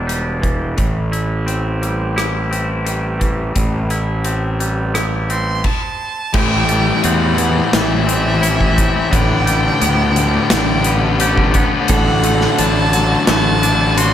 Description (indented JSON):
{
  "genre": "post-rock",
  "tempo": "86 BPM",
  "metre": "4/4",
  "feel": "straight",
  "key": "A minor, A dorian from 6.3 s",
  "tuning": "A4 = 435 Hz",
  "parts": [
    { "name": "twangy electric guitar", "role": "arpeggios", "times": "0.0-14.1 s", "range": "A2 to G4", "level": "-22 LUFS", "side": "equal", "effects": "spring reverb, digital delay" },
    { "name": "fuzz fingered electric bass", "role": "bass", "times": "0.0-14.1 s", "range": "E1 to E2", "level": "-19 LUFS", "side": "right 1 dB", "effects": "overdrive" },
    { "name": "big rock drum kit", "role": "drums", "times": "0.1-14.1 s", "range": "crash cymbal, hi-hat, kick drum, rim click, snare drum", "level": "-20 LUFS", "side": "equal", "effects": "none" },
    { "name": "rich violin", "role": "melody", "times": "5.3-14.1 s", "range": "E5 to C6", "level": "-20 LUFS", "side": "right 4 dB", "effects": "slapback echo, digital delay" },
    { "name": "pedal steel guitar", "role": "sustained chords", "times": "6.3-14.1 s", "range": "A3 to C5", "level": "-26 LUFS", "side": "right 5 dB", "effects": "wide subtle chorus" },
    { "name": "overdriven electric guitar", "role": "riff", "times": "6.3-14.1 s", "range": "A2 to E3", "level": "-17 LUFS", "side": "left 6 dB", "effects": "slapback echo" }
  ],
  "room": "moderate lush hall reverb, RT60 2.5 s",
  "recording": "big arena sound",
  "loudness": "-13 LUFS",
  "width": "side -10 dB against mid",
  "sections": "0.0-6.3 A section; 6.3-14.1 B section",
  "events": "stop 5.7-6.3; build-up 6.3-14.1",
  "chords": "0.0 Em7; 0.8 Am7; 9.1 G/A; 11.9 D/A",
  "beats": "0.08 | 0.78 1.48 2.17 2.87 | 3.57 4.26 4.96 5.65 | 6.35 7.04 7.74 8.43 | 9.12 9.82 10.51 11.20 | 11.89 12.59 13.28 13.97"
}